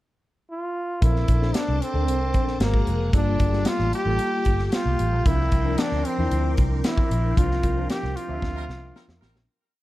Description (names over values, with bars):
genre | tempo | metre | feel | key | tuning
polished 1980s jazz-funk pop | 114 BPM | 4/4 | straight | unclear | A4 = 438 Hz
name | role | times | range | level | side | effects
brilliant trombone | melody | 0.5-9.2 s | Bb3 to G4 | -27 LUFS | equal | none
tine electric piano | accompaniment | 1.0-9.5 s | Cb3 to E5 | -30 LUFS | left 2 dB | overdrive, ensemble chorus
phased string machine | sustained chords | 1.0-9.4 s | G4 to D6 | -38 LUFS | equal | ensemble chorus, phaser
vintage muted fingered electric bass | bass | 1.0-9.5 s | F1 to F2 | -24 LUFS | equal | none
modern studio drum kit | drums | 1.0-9.5 s | hi-hat, kick drum, snare drum | -23 LUFS | equal | none
clear horn section | second line | 8.6-9.4 s | G3 to Bb4 | -46 LUFS | right 2 dB | none
room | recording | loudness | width
light reverb | dark, warm production | -20 LUFS | side -16 dB against mid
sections
0.0-1.0 pickup bar; 1.0-9.5 pre-chorus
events
fade-out 7.4-9.5; band accent 7.4-9.5; drum fill 8.4-9.5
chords
0.0 N.C.; 1.0 Bbmaj9; 2.6 Abm9; 3.1 Gm9; 5.3 C9sus4